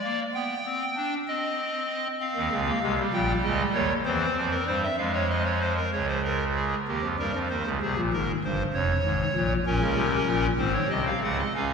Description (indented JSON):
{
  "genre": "classical, baroque-style 3-part fugue for pipe organ",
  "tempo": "64 BPM (dotted quarters)",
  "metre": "6/8",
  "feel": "straight",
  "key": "F minor",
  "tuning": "A4 = 439 Hz",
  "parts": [
    { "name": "pipe organ, clarinet reed", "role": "solo", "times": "0.0-11.7 s", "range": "F1 to G5", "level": "-24 LUFS", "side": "equal", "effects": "none" }
  ],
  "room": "wet church reverb, RT60 2.6 s",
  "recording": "recorded in a church or concert hall",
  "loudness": "-24 LUFS",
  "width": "side -6 dB against mid",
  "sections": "0.0-5.9 A section; 5.9-11.7 B section",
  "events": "none",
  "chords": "0.3 G/B; 1.3 Cm; 2.2 Fm; 3.1 Gdim/Bb; 4.1 C7/E; 5.0 Fm; 5.9 Bbm7/Db; 6.9 Eb; 7.8 Abmaj7; 8.7 Db/F; 9.7 Bbm; 10.6 Ab7"
}